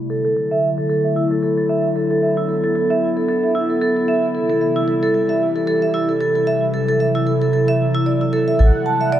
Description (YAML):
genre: IDM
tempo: 113 BPM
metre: 4/4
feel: swing 56% on 16ths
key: unclear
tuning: A4 = 440 Hz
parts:
  - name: warbly tape-like pad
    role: sustained chords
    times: 0.0-9.2 s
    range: C3 to E4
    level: -20 LUFS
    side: left 2 dB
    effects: chorus, built-in reverb
  - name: vibraphone with medium mallets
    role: arpeggios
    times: 0.1-9.2 s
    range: E4 to A5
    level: -18 LUFS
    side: right 2 dB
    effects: dub echo
  - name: warm sub bass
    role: bass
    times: 8.6-8.7 s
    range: A1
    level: -11 LUFS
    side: equal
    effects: none
  - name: bubbling stepped-filter texture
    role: texture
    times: 8.6-9.2 s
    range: F#5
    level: -26 LUFS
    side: right 5 dB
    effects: chorus, built-in reverb
room: wet huge ambient reverb, RT60 4.2 s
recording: dark, warm production, low-pass filter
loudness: -16 LUFS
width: side -11 dB against mid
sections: 0.0-8.6 A section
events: filter sweep on ambient pad 0.0-8.6; filter sweep 0.0-8.6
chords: 0.1 Dadd9; 4.3 C; 8.6 Am7